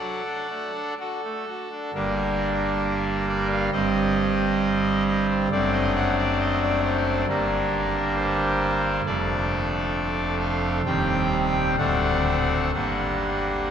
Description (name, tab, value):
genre	classical, chorale-style piece for pipe organ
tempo	67 BPM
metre	4/4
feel	uneven beats, rubato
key	G minor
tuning	A4 = 440 Hz
part	pipe organ, trumpet	solo	0.0-13.7 s	D1 to G5	-21 LUFS	equal	none
room	wet cathedral reverb, RT60 5.2 s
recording	none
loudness	-21 LUFS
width	side -8 dB against mid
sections	0.0-1.9 A section; 1.9-13.7 B section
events	none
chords	0.0 D; 1.9 Gm; 3.7 Cm/G; 5.5 D7/F#; 7.3 Gm; 9.1 Dm/F; 10.8 Cm/Eb; 11.8 D7; 12.7 Gm